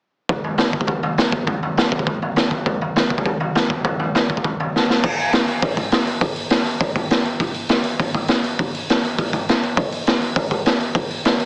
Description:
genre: punk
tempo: 202 BPM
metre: 4/4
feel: straight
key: none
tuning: none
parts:
  - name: raw garage drum kit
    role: drums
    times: 0.3-11.5 s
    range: crash cymbal, hi-hat, kick drum, snare drum, toms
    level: -20 LUFS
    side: equal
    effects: none
room: little or no reverb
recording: heavily compressed radio sound, multiband compression, small speaker sound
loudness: -20 LUFS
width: mono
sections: 0.3-5.0 A section; 5.0-11.5 B section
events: drum fill 4.7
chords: none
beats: | 0.29 0.58 0.88 1.18 | 1.48 1.77 2.07 2.37 | 2.66 2.96 3.26 3.55 | 3.85 4.15 4.44 4.74 | 5.04 5.33 5.63 5.92 | 6.22 6.52 6.81 7.11 | 7.41 7.70 8.00 8.29 | 8.59 8.88 9.18 9.48 | 9.77 10.07 10.37 10.66 | 10.96 11.26

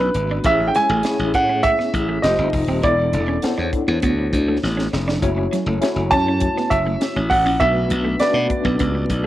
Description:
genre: polished 1980s jazz-funk pop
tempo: 100 BPM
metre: 4/4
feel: straight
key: A major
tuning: A4 = 440 Hz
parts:
  - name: warm grand piano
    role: melody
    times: 0.0-9.3 s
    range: B4 to A5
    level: -19 LUFS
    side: right 2 dB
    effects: none
  - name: barky tine electric piano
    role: accompaniment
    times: 0.0-9.3 s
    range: G#3 to D5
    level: -23 LUFS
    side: left 2 dB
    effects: overdrive, fast tremolo, analog chorus, cassette tape
  - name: clean electric guitar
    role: riff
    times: 0.0-9.3 s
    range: F#3 to E4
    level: -27 LUFS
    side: right 2 dB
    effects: analog chorus, cassette tape
  - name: glassy slap bass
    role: bass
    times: 0.0-9.3 s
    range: Eb1 to B2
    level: -21 LUFS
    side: equal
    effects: none
  - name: tight funk drum kit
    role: drums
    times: 0.1-9.2 s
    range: hi-hat, kick drum, snare drum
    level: -25 LUFS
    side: equal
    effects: cassette tape
room: light reverb, studio ambience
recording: home recording on cassette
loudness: -16 LUFS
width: side -14 dB against mid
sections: 0.0-9.3 A section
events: drum fill 4.6-5.2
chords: 0.4 Amaj7; 2.2 F9; 2.8 E7sus4; 5.2 F#m7; 7.6 Bm7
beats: | 0.45 1.04 1.64 2.24 | 2.84 3.43 4.03 4.63 | 5.22 5.82 6.42 7.01 | 7.61 8.21 8.81

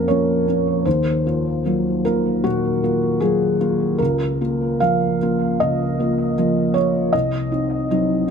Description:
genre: neoclassical minimalist piano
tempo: 77 BPM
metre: 4/4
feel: rubato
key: Bb minor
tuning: A4 = 440 Hz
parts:
  - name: felt-muted upright piano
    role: solo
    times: 0.0-8.3 s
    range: C2 to F5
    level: -17 LUFS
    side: equal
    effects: tape echo
room: light reverb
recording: close, detailed microphones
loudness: -17 LUFS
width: side -6 dB against mid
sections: 0.0-8.3 A section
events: none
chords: 0.0 Bbm; 0.9 Ebmadd9; 4.0 Bbm/Db; 7.1 Cdim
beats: 0.08 | 0.86 1.65 2.44 3.22 | 3.99 4.82 5.60 6.37 | 7.14 7.90

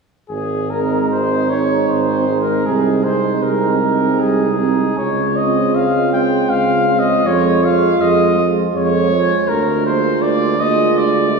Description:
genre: classical, hymn-like piece for brass band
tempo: 74-83 BPM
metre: 3/4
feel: rubato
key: Ab major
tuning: A4 = 441 Hz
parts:
  - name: warm cornet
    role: melody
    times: 0.3-11.4 s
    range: Ab4 to G5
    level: -18 LUFS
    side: left 1 dB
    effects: none
  - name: clear tuba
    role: bass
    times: 0.3-11.4 s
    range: Ab1 to F2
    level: -19 LUFS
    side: right 2 dB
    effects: none
  - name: warm flugelhorn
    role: second line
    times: 0.7-11.4 s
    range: Eb4 to F4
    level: -21 LUFS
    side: right 6 dB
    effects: none
  - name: clear euphonium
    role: accompaniment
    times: 0.7-11.4 s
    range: Ab3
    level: -21 LUFS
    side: right 4 dB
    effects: none
  - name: mellow trombone section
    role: accompaniment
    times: 0.7-11.4 s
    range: Ab3 to C4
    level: -22 LUFS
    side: right 1 dB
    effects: none
room: wet scoring stage reverb, RT60 1.9 s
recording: heard from further back in the room, studio reverb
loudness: -13 LUFS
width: side -4 dB against mid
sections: 0.3-11.4 A section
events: none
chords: 0.3 Ab; 2.7 Ab/C; 5.0 Dbmaj7; 7.3 Db/F; 9.5 Bb7/D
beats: | 0.30 1.10 1.88 | 2.66 3.43 4.20 | 4.98 5.75 6.50 | 7.25 8.00 8.74 | 9.47 10.21 10.95

